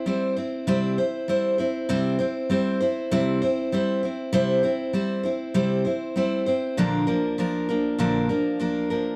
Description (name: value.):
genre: country.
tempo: 98 BPM.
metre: 4/4.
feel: straight.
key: C mixolydian.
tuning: A4 = 440 Hz.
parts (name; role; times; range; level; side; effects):
picked steel-string acoustic guitar; solo; 0.0-9.2 s; Bb2 to C5; -24 LUFS; equal; none.
room: moderate studio reverb, RT60 0.5 s.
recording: dark, warm production.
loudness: -24 LUFS.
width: mono.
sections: 0.0-9.2 A section.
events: none.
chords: 0.0 C; 6.8 Bb.